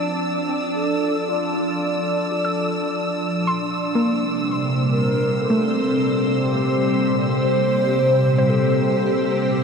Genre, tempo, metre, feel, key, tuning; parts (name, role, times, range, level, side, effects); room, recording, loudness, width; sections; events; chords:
ambient; 58 BPM; 4/4; straight; A4 = 440 Hz
evolving wavetable pad; sustained chords; 0.0-9.6 s; Bb2 to A5; -20 LUFS; equal; ensemble chorus, built-in reverb, phaser, shimmer reverb
soft round pluck; arpeggios; 0.0-9.6 s; A3 to E6; -28 LUFS; equal; chorus, shimmer reverb, ping-pong delay
warm studio violin section; texture; 0.0-9.6 s; E6; -30 LUFS; right 1 dB; shimmer reverb
wooden-headed alto flute; melody; 0.7-9.6 s; F4 to C5; -26 LUFS; equal; shimmer reverb, ping-pong delay
wet huge ambient reverb, RT60 8.0 s; in a vast, echoing space; -18 LUFS; side -6 dB against mid
0.0-9.6 A section
fade-in on alto flute 0.0-9.6
0.0 Bbmaj7 (rootless); 3.3 C/Bb